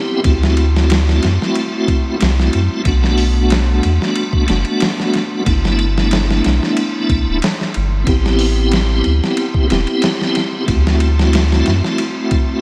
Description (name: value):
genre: trip hop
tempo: 92 BPM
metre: 4/4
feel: straight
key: unclear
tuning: A4 = 439 Hz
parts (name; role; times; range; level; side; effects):
- tonewheel organ; accompaniment; 0.0-12.6 s; A3 to G4; -20 LUFS; equal; chorus vibrato, slow rotary speaker, tremolo, vintage 12-bit sampler grit, tape echo
- boom bap sampler-style drum kit; drums; 0.2-12.5 s; hi-hat, kick drum, ride cymbal, snare drum; -21 LUFS; equal; vintage 12-bit sampler grit, studio reverb
- soft dub sub bass; bass; 0.3-11.8 s; D1 to F#2; -17 LUFS; equal; none
room: moderate lush hall reverb, RT60 2.6 s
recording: dreamy mix soaked in reverb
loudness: -15 LUFS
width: mono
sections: 0.0-12.6 A section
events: none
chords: 0.2 D7; 2.9 Bm7; 5.5 G69; 8.1 Am9; 10.7 D7